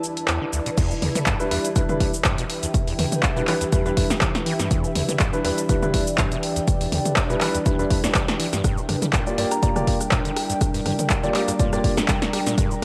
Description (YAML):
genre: acid house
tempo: 122 BPM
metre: 4/4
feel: swing 54% on 16ths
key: E minor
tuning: A4 = 440 Hz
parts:
  - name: dark analog pad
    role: sustained chords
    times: 0.0-12.8 s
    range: E3 to G5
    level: -32 LUFS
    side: equal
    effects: chorus, sidechain pumping, cassette tape
  - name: warm grand piano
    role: stabs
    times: 0.0-11.9 s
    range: G3 to D5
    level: -28 LUFS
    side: equal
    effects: cassette tape, tape echo
  - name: punchy analog drum machine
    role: drums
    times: 0.0-12.8 s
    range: cabasa, crash cymbal, handclaps, hi-hat, rim click, snare drum, toms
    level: -27 LUFS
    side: equal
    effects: none
  - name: granular cloud pad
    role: texture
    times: 0.0-12.8 s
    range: E4 to Bb5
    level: -35 LUFS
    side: equal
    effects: built-in reverb, sidechain pumping, cassette tape
  - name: liquid acid bass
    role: riff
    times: 0.3-12.8 s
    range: D2 to G3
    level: -32 LUFS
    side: equal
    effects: chorus, overdrive, sidechain pumping, cassette tape, tape echo
  - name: electronic kick drum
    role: drums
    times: 0.8-12.7 s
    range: none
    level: -25 LUFS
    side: equal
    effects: none
  - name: soft synth bell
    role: melody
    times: 9.5-9.7 s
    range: Bb5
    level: -34 LUFS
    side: equal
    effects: chorus, phaser, tape echo
room: moderate spring reverb, RT60 1.7 s, digital ambience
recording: home recording on cassette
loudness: -22 LUFS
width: mono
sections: 0.8-12.8 A section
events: drop 0.8-12.8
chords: 0.0 Em7; 8.6 Gm7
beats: 0.28 | 0.78 1.27 1.76 2.25 | 2.74 3.23 3.73 4.22 | 4.71 5.20 5.69 6.18 | 6.68 7.17 7.66 8.15 | 8.64 9.14 9.63 10.12 | 10.61 11.10 11.60 12.09 | 12.58